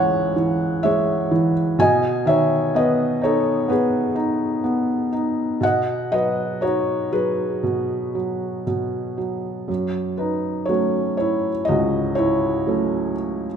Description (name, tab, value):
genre	classical, lyrical solo piano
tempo	57-64 BPM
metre	4/4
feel	rubato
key	F# dorian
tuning	A4 = 438 Hz
part	felt-muted upright piano	solo	0.0-13.6 s	C#2 to G#5	-19 LUFS	equal	none
room	moderate scoring stage reverb, RT60 2.0 s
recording	minimal, uncompressed stereo recording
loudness	-19 LUFS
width	side -7 dB against mid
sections	0.0-9.7 A section; 9.7-13.6 B section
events	none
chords	0.0 C#m; 1.8 G#m/B; 5.6 B; 9.7 F#m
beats	0.85 | 1.80 2.75 3.70 4.65 | 5.62 6.61 7.62 8.66 | 9.69 10.69 11.69 12.67